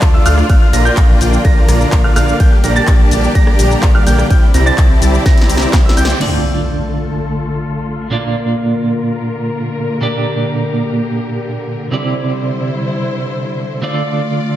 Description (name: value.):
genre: EDM, festival progressive house.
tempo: 126 BPM.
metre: 4/4.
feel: straight.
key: D minor.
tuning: A4 = 440 Hz.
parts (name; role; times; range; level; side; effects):
clear symphonic string section; sustained chords; 0.0-14.6 s; D3 to D5; -21 LUFS; left 2 dB; sidechain pumping, low-pass filter.
dark grand piano; arpeggios; 0.0-6.2 s; E6 to Bb6; -21 LUFS; right 2 dB; sidechain pumping, ping-pong delay.
big supersaw lead; riff; 0.0-6.2 s; A3 to Bb5; -17 LUFS; equal; sidechain pumping, ping-pong delay.
wide detuned saw bass; bass; 0.0-6.1 s; Bb1 to D2; -15 LUFS; equal; chorus, sidechain pumping.
big-room dance drum kit; drums; 0.0-6.3 s; crash cymbal, handclaps, hi-hat, ride cymbal, rim click, shaker, snare drum; -22 LUFS; equal; none.
electronic kick drum; drums; 0.0-5.8 s; none; -10 LUFS; equal; none.
clean electric guitar; accompaniment; 6.2-14.6 s; Bb2 to D5; -18 LUFS; right 2 dB; tremolo, sidechain pumping, ping-pong delay.
impact; sound effects; 6.2-8.1 s; none; -22 LUFS; equal; none.
room: moderate plate reverb, RT60 1.6 s.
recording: dreamy mix soaked in reverb.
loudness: -11 LUFS.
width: side -13 dB against mid.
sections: 0.0-6.2 A section; 6.2-14.6 B section.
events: drop 0.0-6.2; drum fill 5.3-6.2; band accent 6.1; impact 6.2-8.1; filter sweep on string section 6.2-14.6.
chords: 0.5 Bb; 2.4 Gm/Bb; 4.3 Cadd9; 6.2 Dm; 8.1 Bb; 10.0 Gm/Bb; 11.9 Cadd9; 13.8 Dm.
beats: 0.02 | 0.50 0.97 1.45 1.92 | 2.40 2.88 3.35 3.83 | 4.30 4.78 5.26 5.73 | 6.21 6.69 7.16 7.64 | 8.12 8.59 9.07 9.54 | 10.02 10.50 10.97 11.45 | 11.92 12.40 12.88 13.35 | 13.83 14.30.